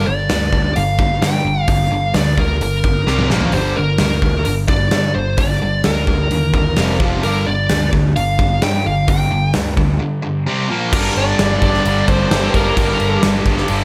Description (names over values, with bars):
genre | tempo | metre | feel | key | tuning
hard rock | 130 BPM | 4/4 | straight | G minor | A4 = 440 Hz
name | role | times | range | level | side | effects
high-gain lead guitar | melody | 0.0-13.2 s | Bb4 to G5 | -23 LUFS | equal | distortion, analog delay
overdriven electric guitar | riff | 0.0-13.8 s | F2 to C4 | -25 LUFS | equal | none
sludgy distorted guitar | riff | 0.0-13.8 s | F2 to C4 | -25 LUFS | equal | overdrive
picked electric bass | bass | 0.0-13.8 s | F1 to G2 | -23 LUFS | equal | none
gated 80s drum kit | drums | 0.3-13.8 s | crash cymbal, hi-hat, kick drum, snare drum, toms | -20 LUFS | equal | none
octave-fuzz lead guitar | second line | 10.9-13.2 s | Bb3 to D4 | -27 LUFS | equal | distortion
tight distorted guitar | riff | 10.9-13.8 s | G2 to G3 | -28 LUFS | equal | none
room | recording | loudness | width
light reverb, small room ambience | none | -16 LUFS | mono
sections
0.0-10.9 A section; 10.9-13.8 B section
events
drum fill 3.1-3.5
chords
0.0 Gm; 3.1 C5; 3.3 Bb5; 3.5 Gm; 6.8 F5; 7.2 G5; 10.5 C5; 10.7 Bb5; 10.9 Gm